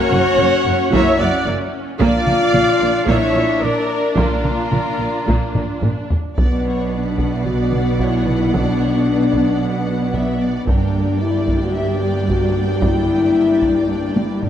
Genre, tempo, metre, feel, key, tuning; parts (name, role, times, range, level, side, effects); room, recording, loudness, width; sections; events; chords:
cinematic, epic orchestral film score; 112 BPM; 4/4; straight; B harmonic minor; A4 = 437 Hz
warm symphonic violin section; melody; 0.0-14.5 s; E#4 to G5; -29 LUFS; equal
warm symphonic violin section; second line; 0.0-14.5 s; E#4 to G5; -25 LUFS; left 1 dB
rich symphonic viola section; accompaniment; 0.0-14.5 s; A#3 to D4; -25 LUFS; right 1 dB
mellow French horn section; sustained chords; 0.0-14.5 s; A#3 to G4; -20 LUFS; left 4 dB
dark trumpet section; stabs; 0.0-5.8 s; A#4 to F#5; -22 LUFS; equal
dark symphonic double bass section; bass; 0.1-14.5 s; F#1 to B1; -24 LUFS; right 4 dB
warm symphonic cello section; bass; 0.1-14.5 s; F#2 to B2; -23 LUFS; right 2 dB
taiko ensemble; drums; 0.1-14.5 s; -22 LUFS; equal
wet scoring stage reverb, RT60 1.9 s; -15 LUFS; side -10 dB against mid
0.0-6.4 A section; 6.4-14.5 B section
drum fill 5.5-6.4, 14.2-14.5
0.0 F#; 2.0 A#; 6.4 Bm; 10.7 Gm